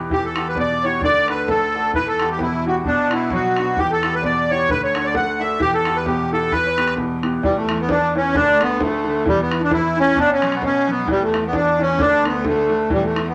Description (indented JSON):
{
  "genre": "celtic folk, Celtic polka",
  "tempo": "131 BPM",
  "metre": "2/4",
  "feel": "swing 57% on 8ths",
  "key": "E dorian",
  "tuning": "A4 = 440 Hz",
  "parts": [
    { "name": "bright upright piano", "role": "accompaniment", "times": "0.0-13.3 s", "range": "B2 to A4", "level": "-27 LUFS", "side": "equal", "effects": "none" },
    { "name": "clear cello", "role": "bass", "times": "0.0-13.3 s", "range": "D2 to B2", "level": "-30 LUFS", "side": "equal", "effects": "none" },
    { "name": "accordion", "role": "melody", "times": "0.1-13.3 s", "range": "G3 to F#5", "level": "-21 LUFS", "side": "equal", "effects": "light tremolo tuning" },
    { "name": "accordion", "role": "second line", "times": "0.1-13.3 s", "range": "G3 to F#5", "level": "-28 LUFS", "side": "equal", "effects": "none" },
    { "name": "bodhran", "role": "percussion", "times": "0.1-13.3 s", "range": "none", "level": "-30 LUFS", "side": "equal", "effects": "none" }
  ],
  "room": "wet small room reverb, RT60 0.5 s",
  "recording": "none",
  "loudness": "-19 LUFS",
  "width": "mono",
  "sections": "0.1-7.4 A section; 7.4-13.3 A section",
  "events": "none",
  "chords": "0.1 Emadd9; 1.0 D; 1.9 Emadd9; 2.9 Bm; 3.8 Emadd9; 4.7 D; 5.6 Emadd9; 6.5 Em; 7.4 Bm11/E; 8.3 D5; 9.3 E7(no3); 10.2 B5; 11.1 Bm11/E (rootless); 12.0 D5",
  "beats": "| 0.11 0.56 | 1.02 1.48 | 1.94 2.40 | 2.85 3.31 | 3.77 4.23 | 4.69 5.14 | 5.60 6.06 | 6.52 6.97 | 7.43 7.89 | 8.34 8.80 | 9.26 9.71 | 10.17 10.63 | 11.08 11.54 | 12.00 12.45 | 12.91"
}